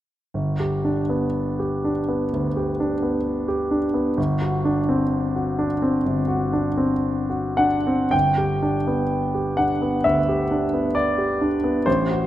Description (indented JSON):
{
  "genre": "classical, romantic character piece for solo piano",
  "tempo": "50-66 BPM",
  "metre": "4/4",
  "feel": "rubato",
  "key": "G major",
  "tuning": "A4 = 440 Hz",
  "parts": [
    { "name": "clear grand piano", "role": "solo", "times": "0.3-12.3 s", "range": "G1 to G5", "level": "-20 LUFS", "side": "equal", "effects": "none" }
  ],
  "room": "wet scoring stage reverb, RT60 1.5 s",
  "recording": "none",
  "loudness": "-20 LUFS",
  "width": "side -13 dB against mid",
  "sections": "0.3-8.1 A section; 8.1-12.3 B section",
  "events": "none",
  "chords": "0.3 G; 4.2 D7/G; 8.1 G"
}